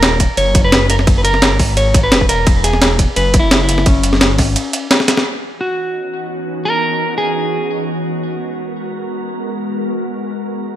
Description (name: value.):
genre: liquid drum and bass.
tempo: 172 BPM.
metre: 4/4.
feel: straight.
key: C# dorian.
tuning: A4 = 439 Hz.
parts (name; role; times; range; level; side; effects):
mellow electric guitar; melody; 0.0-7.8 s; C#4 to C#5; -18 LUFS; equal; spring reverb, ping-pong delay.
dark detuned saw bass; bass; 0.0-4.6 s; D#1 to G#1; -16 LUFS; equal; none.
breakbeat sampler-style drum kit; drums; 0.0-5.2 s; hi-hat, ride cymbal, snare drum; -14 LUFS; equal; none.
electronic kick drum; drums; 0.2-4.5 s; none; -13 LUFS; equal; overdrive.
glassy FM pad; sustained chords; 5.8-10.8 s; E3 to A#4; -21 LUFS; right 1 dB; ensemble chorus, built-in reverb, sidechain pumping.
room: light reverb.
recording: none.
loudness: -13 LUFS.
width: side -12 dB against mid.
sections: 0.0-5.3 A section; 5.3-10.8 B section.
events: drop 0.0-5.3; drum fill 5.0; band accent 5.2.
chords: 0.0 D#m; 2.3 E6; 5.3 C#m11; 7.9 G#m9.